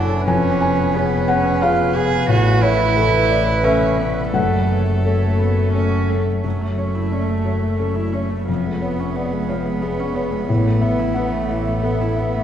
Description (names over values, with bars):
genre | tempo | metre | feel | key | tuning
neoclassical piano and strings | 88 BPM | 3/4 | rubato | F# minor | A4 = 441 Hz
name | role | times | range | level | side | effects
clear cello | second line | 0.0-12.4 s | A3 to G#4 | -23 LUFS | right 4 dB | none
felt-muted upright piano | accompaniment | 0.0-12.4 s | E#2 to G#5 | -20 LUFS | left 2 dB | none
warm viola | accompaniment | 0.0-12.4 s | E3 to B4 | -26 LUFS | equal | none
warbly tape-like pad | sustained chords | 0.0-12.4 s | A3 to E5 | -28 LUFS | left 1 dB | chorus, built-in reverb
rich double bass | bass | 0.0-12.4 s | E#1 to A1 | -22 LUFS | equal | none
room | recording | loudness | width
wet church reverb, RT60 3.6 s | recorded in a church or concert hall, nothing above 10.3 kHz, faint mains hum | -16 LUFS | side -9 dB against mid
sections
0.0-6.4 A section; 6.4-12.4 B section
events
none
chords
0.3 C#7/E#; 2.3 Asus2; 4.3 F#m; 6.4 F#m7; 8.5 C#7/E#; 10.5 Asus2